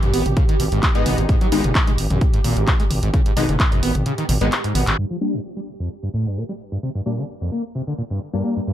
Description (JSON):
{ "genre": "driving peak-time techno", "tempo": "130 BPM", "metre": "4/4", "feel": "straight", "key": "unclear", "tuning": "A4 = 441 Hz", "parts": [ { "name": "overdriven acid bass", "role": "riff", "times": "0.0-8.7 s", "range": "F2 to Cb4", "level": "-24 LUFS", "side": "equal", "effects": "distortion, lush chorus, sidechain pumping, digital delay" }, { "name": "swarming drone", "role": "drone", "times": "0.0-5.0 s", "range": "G4", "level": "-30 LUFS", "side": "right 4 dB", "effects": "built-in reverb, sidechain pumping" }, { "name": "punchy analog drum machine", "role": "drums", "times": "0.0-8.7 s", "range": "handclaps, hi-hat, toms", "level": "-24 LUFS", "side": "equal", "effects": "none" }, { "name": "growling FM bass", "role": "bass", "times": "0.1-5.0 s", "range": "F#1 to Ab1", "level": "-22 LUFS", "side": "equal", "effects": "sidechain pumping" }, { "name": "electronic kick drum", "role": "drums", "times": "0.4-3.7 s", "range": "none", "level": "-18 LUFS", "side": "equal", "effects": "none" }, { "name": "rave stab", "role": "stabs", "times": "0.9-8.7 s", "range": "G3 to Eb4", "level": "-25 LUFS", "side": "left 4 dB", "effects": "chorus, built-in reverb, sidechain pumping, digital delay" } ], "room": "digital ambience", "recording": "low-pass filter", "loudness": "-18 LUFS", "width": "side -12 dB against mid", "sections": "0.0-5.0 A section; 5.0-8.7 B section", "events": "kick drops out 4.1-5.0; drum fill 4.5-5.0; band accent 4.9; filter sweep on synth stab 5.0-8.7; filter sweep 5.0-8.7", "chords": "0.0 Abm; 5.0 Gm" }